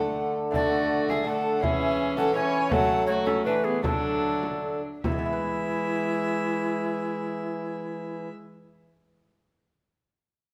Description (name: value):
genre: classical, renaissance-style consort dance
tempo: 144-166 BPM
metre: 3/4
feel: straight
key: E mixolydian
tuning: A4 = 441 Hz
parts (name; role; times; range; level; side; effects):
- mellow tenor recorder; melody; 0.0-8.3 s; E4 to G#5; -32 LUFS; equal; none
- rich violin; second line; 0.0-8.3 s; B3 to E5; -34 LUFS; equal; none
- lute; accompaniment; 0.0-9.1 s; D3 to B4; -36 LUFS; equal; none
- warm viola; accompaniment; 0.0-8.3 s; F#3 to C#4; -35 LUFS; equal; none
- clear trombone; bass; 0.0-8.3 s; D3 to F#3; -33 LUFS; equal; none
- frame drum; percussion; 0.5-5.2 s; none; -35 LUFS; equal; none
room: moderate recital hall reverb, RT60 1.7 s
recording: none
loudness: -26 LUFS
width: mono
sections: 0.0-5.0 A section; 5.0-7.5 B section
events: slowing down 2.2-5.0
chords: 0.0 D; 1.6 C#m/E; 2.7 F#m; 3.8 D; 5.0 E